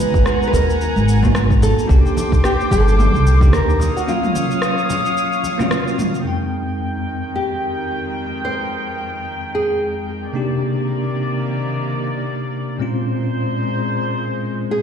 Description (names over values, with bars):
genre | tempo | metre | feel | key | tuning
sunset chillout | 110 BPM | 4/4 | swing 57% on 16ths | F minor | A4 = 439 Hz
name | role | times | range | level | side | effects
nylon-string guitar | melody | 0.0-10.3, 14.7-14.8 s | F4 to C5 | -23 LUFS | right 1 dB | tape echo
bell-like tine electric piano | accompaniment | 0.0-14.8 s | F2 to G5 | -23 LUFS | equal | fast stereo tremolo, auto-pan, ping-pong delay
rich chamber string section | sustained chords | 0.0-14.8 s | F2 to Eb6 | -24 LUFS | left 1 dB | none
deep house drum kit | drums | 0.0-6.2 s | rim click, shaker, toms | -25 LUFS | equal | low-pass filter on perc, low-pass filter on snare, low-pass filter on toms, low-pass filter on room
upright bass | bass | 0.1-3.9 s | G1 to Eb2 | -16 LUFS | equal | none
electronic kick drum | drums | 0.1-3.5 s | none | -17 LUFS | equal | none
congas | percussion | 0.5-6.1 s | none | -28 LUFS | left 2 dB | none
room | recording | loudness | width
moderate lush hall reverb, RT60 1.8 s, small room ambience | played on a big sound system in a bare room, large studio reverb | -16 LUFS | side -8 dB against mid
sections
0.0-6.3 A section; 6.3-14.8 B section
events
break 4.1-6.3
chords
0.0 Abm9; 1.9 Cm9; 3.8 Ebm9; 6.3 Fm9; 10.3 Cm9; 12.8 Bbm9